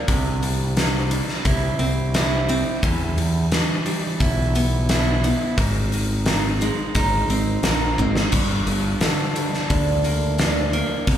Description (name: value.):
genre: quiet-loud alternative rock.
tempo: 87 BPM.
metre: 4/4.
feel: straight.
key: unclear.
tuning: A4 = 440 Hz.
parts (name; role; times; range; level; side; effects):
picked steel-string acoustic guitar; arpeggios; 0.0-11.2 s; G2 to E4; -24 LUFS; right 1 dB; none.
growling fingered electric bass; bass; 0.1-11.2 s; G1 to E2; -22 LUFS; equal; overdrive.
big rock drum kit; drums; 0.1-11.2 s; hi-hat, kick drum, snare drum, splash cymbal; -22 LUFS; equal; none.
room: light reverb.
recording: live gig heard through the venue's PA, club reverb.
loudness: -18 LUFS.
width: side -10 dB against mid.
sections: 0.0-11.2 A section.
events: drum fill 8.0-8.3.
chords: 0.1 C; 2.8 Em; 5.6 Ab; 8.3 Gm.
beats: | 0.09 0.77 1.46 2.15 | 2.83 3.52 4.21 4.89 | 5.58 6.27 6.96 7.64 | 8.33 9.02 9.70 10.39 | 11.07.